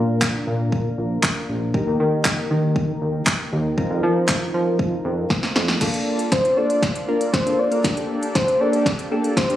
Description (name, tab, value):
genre	dance-pop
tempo	118 BPM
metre	4/4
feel	straight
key	Bb major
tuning	A4 = 437 Hz
part	soft electric-piano-like synth keys	accompaniment	0.0-9.6 s	Bb3 to Bb4	-24 LUFS	equal	chorus, phaser, sidechain pumping
part	chorused synth bass	bass	0.0-5.8 s	Bb1 to F3	-21 LUFS	equal	sidechain pumping
part	deep house drum kit	drums	0.2-9.6 s	crash cymbal, handclaps, hi-hat, kick drum, snare drum	-21 LUFS	equal	none
part	soft supersaw	sustained chords	5.8-9.6 s	Bb3 to D5	-29 LUFS	equal	sidechain pumping
part	soft octave-layered synth lead	melody	6.3-9.6 s	C5 to D5	-21 LUFS	left 1 dB	chorus, dub echo
room	light reverb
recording	recorded on a phone in the room, studio reverb, compression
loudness	-18 LUFS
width	side -12 dB against mid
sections	0.0-5.8 A section; 5.8-9.6 B section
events	drum fill 5.3-5.8, 5.8-9.6; build-up 5.8-9.6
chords	0.0 Bb; 1.7 Eb; 3.8 F7sus4; 5.8 Bbmaj7; 7.8 Gmadd9